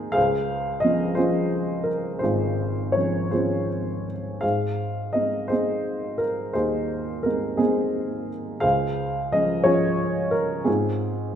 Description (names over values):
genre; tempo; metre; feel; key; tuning
classical, lyrical solo piano; 54-61 BPM (dotted quarters); 6/8; rubato; unclear; A4 = 440 Hz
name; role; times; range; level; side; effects
dark upright piano; solo; 0.0-11.4 s; Ab1 to F5; -22 LUFS; equal; none
room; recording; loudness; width
moderate concert hall reverb, RT60 2.1 s; minimal, uncompressed stereo recording; -22 LUFS; side -9 dB against mid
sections
0.0-11.4 A section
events
none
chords
0.2 Dbmaj7; 4.4 Ab; 8.6 Dbmaj7; 10.7 Ab6